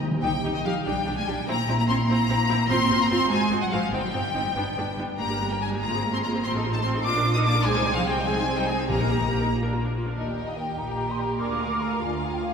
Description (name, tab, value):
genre	quick classical-period movement for symphony orchestra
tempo	97 BPM (dotted quarters)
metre	6/8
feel	rubato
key	C minor, Eb major from 5.2 s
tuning	A4 = 444 Hz
part	timpani	percussion	0.0-0.2, 8.9-9.5 s	Bb2 to Eb3	-31 LUFS	left 1 dB	none
part	rich studio violin section	melody	0.2-12.5 s	Eb5 to Eb6	-28 LUFS	left 3 dB	none
part	clear studio violin section	second line	0.2-12.5 s	D4 to Eb6	-32 LUFS	left 2 dB	none
part	rich studio viola section	accompaniment	0.2-12.5 s	G3 to C5	-30 LUFS	equal	none
part	rich studio cello section	bass	0.2-12.5 s	D2 to Eb4	-29 LUFS	right 2 dB	none
part	rich studio double bass section	bass	0.2-12.5 s	G1 to Eb2	-29 LUFS	right 1 dB	none
part	mellow large flute ensemble	second line	10.2-12.5 s	Eb5 to D6	-30 LUFS	equal	none
room	wet church reverb, RT60 2.5 s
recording	minimal, uncompressed stereo recording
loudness	-22 LUFS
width	side -6 dB against mid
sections	0.2-10.2 A section; 10.2-12.5 B section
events	timpani fill 0.0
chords	0.2 Cm; 0.8 G/B; 1.5 C7/Bb; 2.7 Fm; 3.3 Ab7; 3.9 Cm/G; 4.6 G; 5.2 Gm; 5.8 Fm/Ab; 6.4 F7/A; 7.0 Bb; 7.7 Ab/C; 8.9 Eb/Bb; 9.5 Bb; 10.2 Eb; 11.4 Bb7/D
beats	| 0.22 0.84 | 1.47 2.08 | 2.69 3.30 | 3.93 4.55 | 5.19 5.81 | 6.44 7.04 | 7.65 8.27 | 8.89 9.53 | 10.17 10.79 | 11.41 12.02